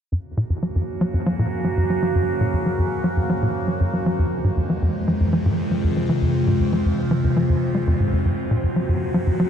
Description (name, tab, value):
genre	ambient, sequencer-driven space music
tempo	118 BPM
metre	4/4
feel	straight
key	Gb lydian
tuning	A4 = 440 Hz
part	evolving wavetable pad	sustained chords	0.6-9.5 s	F2 to Gb4	-23 LUFS	equal	phaser, built-in reverb
part	tight sequencer bass	riff	0.1-9.5 s	F2 to Ab3	-21 LUFS	equal	wide subtle chorus, vintage 12-bit sampler grit, tape echo
part	wind-like tuned noise texture	texture	3.0-9.5 s	C4 to C5	-37 LUFS	left 1 dB	built-in reverb
room	wet huge ambient reverb, RT60 7.8 s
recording	dark, warm production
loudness	-19 LUFS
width	side -8 dB against mid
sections	0.1-9.5 A section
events	fade-in on synth texture 0.1-9.5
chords	0.1 Gb; 4.2 Fm; 8.3 Gb